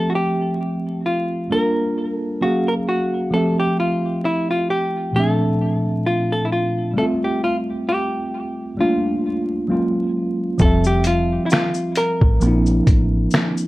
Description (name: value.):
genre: lo-fi hip hop.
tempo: 66 BPM.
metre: 4/4.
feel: swing 56% on 16ths.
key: F major.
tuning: A4 = 437 Hz.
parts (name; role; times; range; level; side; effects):
hollow-body jazz guitar; melody; 0.0-13.3 s; E4 to Bb4; -22 LUFS; equal; low-pass filter, tape echo, plate reverb.
mellow tine electric piano; accompaniment; 0.0-13.7 s; Bb2 to F5; -20 LUFS; equal; medium stereo tremolo, cassette tape, low-pass filter.
deep dub fingered electric bass; bass; 10.6-13.3 s; F1 to Bb1; -19 LUFS; equal; none.
lo-fi sampler-style drum kit; drums; 10.6-13.7 s; finger snaps, hi-hat, kick drum, shaker, snare drum; -17 LUFS; equal; none.
room: wet studio reverb, RT60 0.5 s.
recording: vinyl crackle.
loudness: -17 LUFS.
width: side -18 dB against mid.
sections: 0.0-10.6 A section; 10.6-13.7 B section.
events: none.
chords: 0.0 Fmaj9; 1.5 Gm7; 2.4 Gbmaj9; 3.3 Fmaj9; 5.1 Bbmaj9#11; 7.0 Fmaj9; 8.8 Gm9; 9.7 Gbmaj9; 10.6 Fmaj7sus2; 12.4 Bbmaj9#11.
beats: 0.60 1.51 2.42 | 3.32 4.23 5.14 6.05 | 6.96 7.87 8.78 9.69 | 10.60 11.51 12.41 13.32.